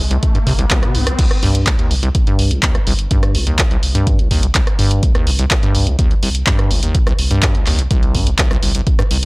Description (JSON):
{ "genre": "acid house", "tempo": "125 BPM", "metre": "4/4", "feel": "straight", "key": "C minor pentatonic", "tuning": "A4 = 440 Hz", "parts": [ { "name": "acid bass, square", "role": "riff", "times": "0.0-9.2 s", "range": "Bb1 to C3", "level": "-18 LUFS", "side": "equal", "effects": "sidechain pumping, tape echo" }, { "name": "round analog bass", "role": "bass", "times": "0.0-9.3 s", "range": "G1 to C2", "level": "-18 LUFS", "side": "equal", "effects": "sidechain pumping" }, { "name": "riser", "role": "sound effects", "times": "0.0-1.2 s", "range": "none", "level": "-27 LUFS", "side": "left 2 dB", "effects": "none" }, { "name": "punchy analog drum machine", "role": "drums", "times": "0.1-9.3 s", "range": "crash cymbal, handclaps, hi-hat, rim click", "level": "-20 LUFS", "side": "equal", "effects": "none" }, { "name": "electronic kick drum", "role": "drums", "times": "0.2-9.0 s", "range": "none", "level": "-16 LUFS", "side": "equal", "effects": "none" } ], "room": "little or no reverb", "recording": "dry, gritty hardware recording", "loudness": "-12 LUFS", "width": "side -26 dB against mid", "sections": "0.0-1.2 A section; 1.2-9.3 B section", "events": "riser 0.0-1.2; drop 1.2-9.3", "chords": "0.0 C5; 1.2 Cm", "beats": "0.23 0.71 | 1.19 1.67 2.15 2.63 | 3.11 3.59 4.07 4.55 | 5.03 5.51 5.99 6.47 | 6.95 7.43 7.91 8.39 | 8.87" }